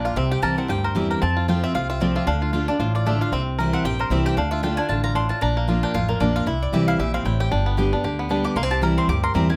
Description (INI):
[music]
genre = bluegrass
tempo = 229 BPM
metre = 4/4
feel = swing 56% on 8ths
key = unclear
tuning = A4 = 438 Hz
[part]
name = bluegrass banjo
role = melody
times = 0.0-9.6 s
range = Bb3 to Bb4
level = -28 LUFS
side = equal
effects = none
[part]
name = picked steel-string acoustic guitar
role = accompaniment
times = 0.0-9.6 s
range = F2 to G4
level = -26 LUFS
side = equal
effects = none
[part]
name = mandolin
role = stabs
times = 0.0-9.6 s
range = Bb4 to D6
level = -31 LUFS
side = equal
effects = none
[part]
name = upright bass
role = bass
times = 0.0-9.6 s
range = G1 to F2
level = -27 LUFS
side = equal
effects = none
[sound]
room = moderate studio reverb, RT60 0.5 s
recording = close, detailed microphones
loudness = -22 LUFS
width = mono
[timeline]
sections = 0.0-9.6 A section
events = mandolin solo 0.0-9.6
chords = 0.2 C; 1.2 F; 2.3 Dm; 3.3 C; 4.4 Dm; 5.4 Bb; 6.5 C; 7.5 G; 8.6 C